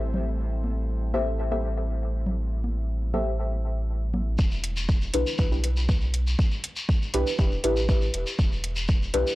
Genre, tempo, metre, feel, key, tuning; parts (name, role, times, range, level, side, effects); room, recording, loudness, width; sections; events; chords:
dub techno; 120 BPM; 4/4; straight; E minor; A4 = 440 Hz
airy breathy pad; sustained chords; 0.0-4.3 s; G3 to E4; -38 LUFS; equal; chorus, sidechain pumping
soft dub sub bass; bass; 0.0-9.2 s; E1 to B1; -27 LUFS; equal; sidechain pumping
congas; percussion; 0.1-4.2 s; -34 LUFS; equal; sidechain pumping on perc, dub echo
deep mellow chord stab; stabs; 1.1-9.3 s; D4 to E5; -29 LUFS; left 1 dB; chorus, phaser, sidechain pumping, dub echo
electronic kick drum; drums; 4.4-9.0 s; -23 LUFS; equal; overdrive
shekere; percussion; 4.4-9.3 s; -34 LUFS; left 2 dB
electronic hi-hat; drums; 4.6-9.2 s; -32 LUFS; equal; overdrive
digital ambience; dry, gritty hardware recording; -23 LUFS; side -18 dB against mid
0.0-4.4 A section; 4.4-9.3 B section
filter sweep on analog synth pad 0.0-4.4
0.0 Am7; 4.4 Em7